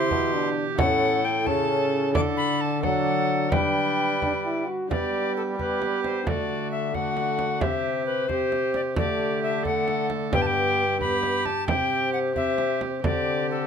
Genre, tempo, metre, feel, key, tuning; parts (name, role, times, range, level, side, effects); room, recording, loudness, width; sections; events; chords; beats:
classical, renaissance-style consort dance; 88 BPM (dotted quarters); 6/8; straight; G major; A4 = 440 Hz
bright alto recorder; melody; 0.0-13.7 s; A4 to D6; -27 LUFS; left 5 dB
warm viola; second line; 0.0-13.7 s; F#4 to B4; -29 LUFS; right 7 dB
concert harp; accompaniment; 0.0-13.7 s; G2 to E5; -32 LUFS; left 9 dB
warm trombone; accompaniment; 0.0-13.7 s; A3 to F#4; -30 LUFS; left 1 dB
mellow bassoon; bass; 0.0-13.7 s; G2 to G3; -29 LUFS; right 2 dB
frame drum; percussion; 0.1-13.3 s; -29 LUFS; right 3 dB
light reverb; -22 LUFS; side -7 dB against mid
0.0-4.9 A section; 4.9-13.7 B section
0.0 C; 0.8 A; 2.1 D; 3.5 G; 6.3 D; 7.6 C; 9.0 Dsus4; 9.7 D; 10.3 G; 11.7 C; 13.0 D7sus4
0.11 | 0.79 1.47 | 2.15 2.83 | 3.52 4.22 | 4.91 5.59 | 6.27 6.94 | 7.62 8.30 | 8.98 9.65 | 10.33 11.01 | 11.69 12.37 | 13.05